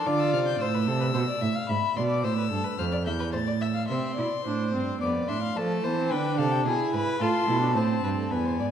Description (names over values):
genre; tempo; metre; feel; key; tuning
classical, baroque-style fugue for string quartet; 109 BPM; 3/4; straight; unclear; A4 = 440 Hz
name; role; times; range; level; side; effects
warm violin; melody; 0.0-8.7 s; F5 to A6; -33 LUFS; left 8 dB; none
warm violin; second line; 0.0-8.7 s; G#4 to F5; -30 LUFS; left 2 dB; none
rich viola; accompaniment; 0.0-0.6, 3.9-8.7 s; A3 to F4; -30 LUFS; right 2 dB; none
rich cello; bass; 0.1-8.7 s; E2 to F3; -28 LUFS; right 4 dB; none
room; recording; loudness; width
wet scoring stage reverb, RT60 1.9 s; none; -24 LUFS; side -8 dB against mid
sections
0.0-3.9 A section; 3.9-8.7 B section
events
none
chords
0.0 Dm; 0.6 Am; 1.7 E/G#; 2.2 A5; 3.9 Am; 5.0 F; 5.6 Dm; 6.7 E; 7.2 F; 7.8 Am